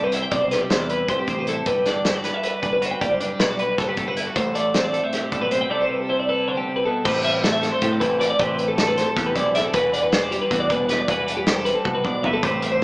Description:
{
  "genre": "math rock and midwest emo",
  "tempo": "312 BPM (eighths)",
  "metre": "7/8",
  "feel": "straight",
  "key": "unclear",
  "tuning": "A4 = 439 Hz",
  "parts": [
    { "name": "twelve-string electric guitar", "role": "accompaniment", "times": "0.0-12.8 s", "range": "A2 to D5", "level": "-25 LUFS", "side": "right 1 dB", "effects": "spring reverb" },
    { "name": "twelve-string electric guitar", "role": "arpeggios", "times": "0.0-12.8 s", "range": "G4 to G5", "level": "-22 LUFS", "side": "equal", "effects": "none" },
    { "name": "growling picked electric bass", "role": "bass", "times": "0.0-12.8 s", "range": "E1 to A2", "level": "-30 LUFS", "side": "equal", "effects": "overdrive" },
    { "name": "loose indie drum kit", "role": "drums", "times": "0.1-12.7 s", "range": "crash cymbal, hi-hat, kick drum, snare drum, toms", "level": "-24 LUFS", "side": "equal", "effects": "none" }
  ],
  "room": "wet large studio reverb, RT60 1.2 s",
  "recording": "band playing live in one room, small speaker sound",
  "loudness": "-19 LUFS",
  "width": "side -22 dB against mid",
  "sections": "0.0-7.1 A section; 7.1-12.8 B section",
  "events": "drum fill 11.9-12.4",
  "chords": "0.0 Cmaj7; 1.7 Gmaj7; 4.4 Am7; 5.7 C6; 7.1 Am9; 9.7 Em9"
}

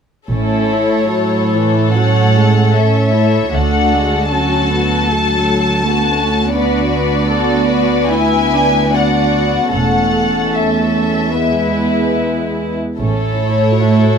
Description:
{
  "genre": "classical, slow romantic movement for string orchestra",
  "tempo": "68-82 BPM",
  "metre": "4/4",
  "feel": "rubato",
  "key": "A major",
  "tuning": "A4 = 436 Hz",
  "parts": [
    { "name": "dark studio violin section", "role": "melody", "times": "0.3-14.2 s", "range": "C#5 to A5", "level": "-18 LUFS", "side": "left 4 dB", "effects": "none" },
    { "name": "rich studio violin section", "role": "second line", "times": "0.3-14.2 s", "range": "E4 to D5", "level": "-19 LUFS", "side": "left 3 dB", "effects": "none" },
    { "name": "dark studio viola section", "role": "accompaniment", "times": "0.3-14.2 s", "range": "E3 to F#4", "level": "-18 LUFS", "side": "right 2 dB", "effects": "none" },
    { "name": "dark studio cello section", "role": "bass", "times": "0.3-14.2 s", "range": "D2 to A2", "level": "-17 LUFS", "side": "right 2 dB", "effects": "none" },
    { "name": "rich studio double bass section", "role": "bass", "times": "0.3-4.3, 9.7-13.7 s", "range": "E1 to D2", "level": "-20 LUFS", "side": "right 2 dB", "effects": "none" }
  ],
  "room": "little or no reverb",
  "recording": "close, detailed microphones",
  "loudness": "-12 LUFS",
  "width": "side -6 dB against mid",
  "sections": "0.3-14.2 A section",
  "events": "none",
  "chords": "0.3 A; 3.5 D; 6.5 Bm/D; 9.7 A/E; 11.3 E; 13.0 A"
}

